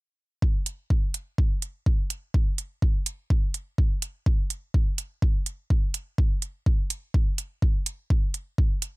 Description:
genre	minimal techno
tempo	125 BPM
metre	4/4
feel	swing 55% on 16ths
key	none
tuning	none
part	electronic kick drum	drums	0.4-8.7 s	none	-22 LUFS	equal	none
part	electronic hi-hat	drums	0.7-8.9 s	none	-28 LUFS	right 5 dB	none
room	little or no reverb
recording	none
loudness	-24 LUFS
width	side -23 dB against mid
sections	0.4-9.0 A section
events	none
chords	none

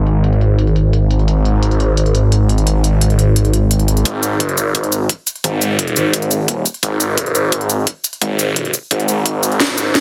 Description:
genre	dark technical drum and bass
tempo	173 BPM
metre	4/4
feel	straight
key	unclear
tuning	A4 = 439 Hz
part	phased detuned saw bass	bass	0.0-10.0 s	D#1 to G#1	-16 LUFS	equal	phaser, overdrive, sidechain pumping, high-pass filter
part	drum and bass drum kit	drums	0.1-10.0 s	hi-hat, shaker, snare drum	-21 LUFS	equal	none
part	electronic kick drum	drums	4.1-10.0 s	none	-22 LUFS	equal	high-pass filter on kick, high-pass filter on room
room	little or no reverb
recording	heavily compressed radio sound, high-pass filter, low-pass filter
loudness	-16 LUFS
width	mono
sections	0.0-4.1 A section; 4.1-10.0 B section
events	filter sweep 0.0-4.1; build-up 4.1-10.0; drum fill 9.6-10.0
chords	none

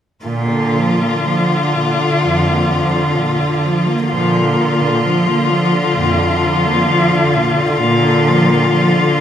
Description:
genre	classical, lyrical piece for cello ensemble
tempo	59-68 BPM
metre	4/4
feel	rubato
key	Bb major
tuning	A4 = 440 Hz
part	rich cello	melody	0.2-9.2 s	F4	-16 LUFS	left 3 dB	none
part	rich cello	second line	0.2-9.2 s	Bb2 to Bb3	-18 LUFS	right 3 dB	none
part	rich cello	bass	0.2-8.6 s	F2 to Bb2	-21 LUFS	right 1 dB	none
part	warm cello	accompaniment	0.3-9.2 s	D3	-19 LUFS	left 1 dB	none
room	wet recital hall reverb, RT60 1.4 s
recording	recorded in a church or concert hall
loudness	-12 LUFS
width	side -9 dB against mid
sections	0.2-9.2 A section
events	none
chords	0.2 Bb

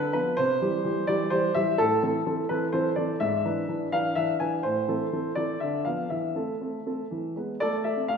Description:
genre	classical-period piano sonatina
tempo	126 BPM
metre	3/4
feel	rubato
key	A minor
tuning	A4 = 440 Hz
part	warm baby grand piano	solo	0.0-8.2 s	G#2 to G#5	-24 LUFS	equal	none
room	wet scoring stage reverb, RT60 1.9 s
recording	minimal, uncompressed stereo recording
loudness	-24 LUFS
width	side -6 dB against mid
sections	0.0-7.6 A section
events	none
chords	0.4 C; 1.8 Am; 3.2 E7/G#; 4.6 Am; 5.6 Bdim/D; 6.1 Am/E; 7.1 E; 7.6 Am

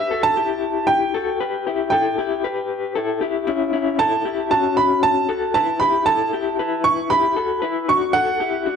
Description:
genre	indie pop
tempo	116 BPM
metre	4/4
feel	straight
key	unclear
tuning	A4 = 441 Hz
part	clear upright piano	melody	0.0-8.8 s	E5 to C#6	-19 LUFS	right 3 dB	none
part	electric guitar through a small old amp	arpeggios	0.0-8.8 s	C#4 to B4	-21 LUFS	left 6 dB	tremolo, slapback echo
room	moderate club reverb, RT60 0.9 s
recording	dark, warm production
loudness	-17 LUFS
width	side -6 dB against mid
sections	0.0-8.8 A section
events	none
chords	0.0 C#m7b5; 4.0 Aadd9; 8.1 Bm (rootless)

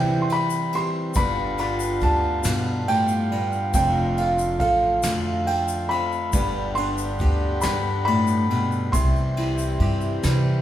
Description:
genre	acoustic folk duo or small band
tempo	46 BPM (dotted quarters)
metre	6/8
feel	straight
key	unclear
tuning	A4 = 440 Hz
part	felt-muted upright piano	melody	0.0-10.6 s	F5 to C6	-25 LUFS	right 1 dB	none
part	nylon-string guitar	accompaniment	0.0-10.6 s	D2 to A4	-27 LUFS	left 1 dB	none
part	hand-pumped harmonium	sustained chords	0.0-10.6 s	D3 to G4	-29 LUFS	left 1 dB	none
part	upright bass	bass	0.0-10.6 s	F1 to C3	-26 LUFS	equal	none
part	soft brush drum kit	drums	0.3-10.4 s	kick drum, ride cymbal, snare drum	-30 LUFS	equal	none
part	tube shaker	percussion	0.3-10.4 s	none	-36 LUFS	left 5 dB	none
room	wet large studio reverb, RT60 1.2 s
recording	band playing live in one room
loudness	-20 LUFS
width	side -12 dB against mid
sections	0.0-10.6 A section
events	none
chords	0.0 C; 1.2 G7; 3.8 Dm/F; 6.3 G; 8.9 C

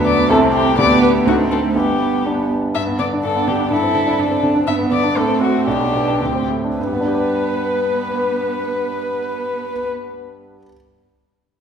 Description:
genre	quick classical-period movement for piano quartet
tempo	102-126 BPM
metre	2/4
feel	straight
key	G major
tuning	A4 = 440 Hz
part	dark cello	second line	0.0-9.9 s	A3 to E4	-23 LUFS	right 6 dB	none
part	bright concert grand piano	accompaniment	0.0-10.8 s	G1 to D5	-19 LUFS	right 1 dB	none
part	warm viola	accompaniment	0.0-9.9 s	B3 to B4	-23 LUFS	right 2 dB	none
part	dark violin	melody	0.1-9.9 s	F#4 to E5	-21 LUFS	left 6 dB	none
room	wet recital hall reverb, RT60 1.5 s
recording	recorded in a church or concert hall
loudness	-15 LUFS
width	side -7 dB against mid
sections	0.0-2.7 A section; 2.7-6.8 B section; 6.8-9.1 C section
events	slowing down 4.2-6.8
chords	0.3 Am/C; 0.8 G/D; 1.3 D7(no3); 1.7 G; 3.7 D5/G; 4.7 G; 5.2 F#dim/A; 5.7 G/B; 6.2 D5; 6.8 G

